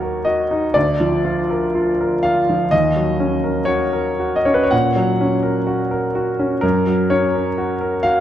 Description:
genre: classical, romantic nocturne for solo piano.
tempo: 54-65 BPM.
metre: 4/4.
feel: rubato.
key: unclear.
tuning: A4 = 440 Hz.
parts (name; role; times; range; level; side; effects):
clear baby grand piano; solo; 0.0-8.2 s; D2 to F#5; -16 LUFS; equal; none.
room: moderate concert hall reverb, RT60 2.3 s.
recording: dark, warm production.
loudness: -16 LUFS.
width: side -11 dB against mid.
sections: 0.0-8.2 A section.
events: none.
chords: 0.0 D#m; 0.8 A#/D; 2.7 D#m7; 6.6 Gb.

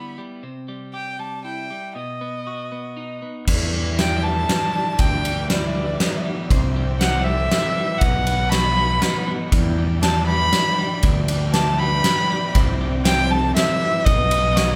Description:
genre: post-rock.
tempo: 119 BPM.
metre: 3/4.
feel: straight.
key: E minor.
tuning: A4 = 439 Hz.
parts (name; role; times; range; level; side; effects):
warm violin; melody; 0.0-14.8 s; D5 to B5; -25 LUFS; equal; none.
twelve-string electric guitar; arpeggios; 0.0-14.8 s; E2 to G4; -32 LUFS; equal; spring reverb.
warm chamber string section; sustained chords; 3.5-14.8 s; E3 to G5; -37 LUFS; equal; none.
vibraphone with medium hard mallets; arpeggios; 3.5-14.8 s; A4 to E5; -38 LUFS; equal; none.
fuzz fingered electric bass; bass; 3.5-14.8 s; B1 to E2; -25 LUFS; equal; overdrive.
huge arena drum kit; drums; 3.5-14.7 s; crash cymbal, kick drum, ride cymbal, snare drum; -23 LUFS; equal; none.
room: light reverb.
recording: band playing live in one room.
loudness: -20 LUFS.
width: mono.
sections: 0.0-3.5 A section; 3.5-14.8 B section.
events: none.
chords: 0.4 C; 2.0 B; 3.5 Em7; 5.0 G6/D; 6.5 C; 8.0 B; 9.5 Em7; 11.0 G6/D; 12.5 C; 14.1 B.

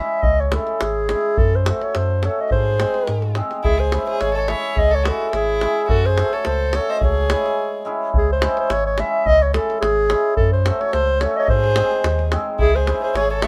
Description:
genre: balkan folk, Balkan wedding band.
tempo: 107 BPM.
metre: 2/4.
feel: swing 54% on 16ths.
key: C# harmonic minor.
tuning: A4 = 443 Hz.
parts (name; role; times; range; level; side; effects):
dark clarinet; melody; 0.0-13.5 s; G#4 to E5; -22 LUFS; equal; none.
cimbalom; accompaniment; 0.0-13.5 s; G#3 to A4; -28 LUFS; equal; none.
davul; percussion; 0.2-13.5 s; none; -25 LUFS; equal; none.
warm sub bass; bass; 0.3-13.5 s; G#1 to G#2; -23 LUFS; equal; none.
clear violin; second line; 2.5-7.8, 11.5-13.5 s; E4 to C#5; -29 LUFS; equal; none.
room: light reverb.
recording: none.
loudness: -19 LUFS.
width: mono.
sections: 0.0-8.1 A section; 8.1-13.5 A section.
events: break 7.6-8.1.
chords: 0.0 C#m; 1.4 F#m; 2.5 G#; 3.6 C#m; 5.9 F#m; 7.0 C#m; 10.4 F#m; 11.5 G#; 12.6 C#m.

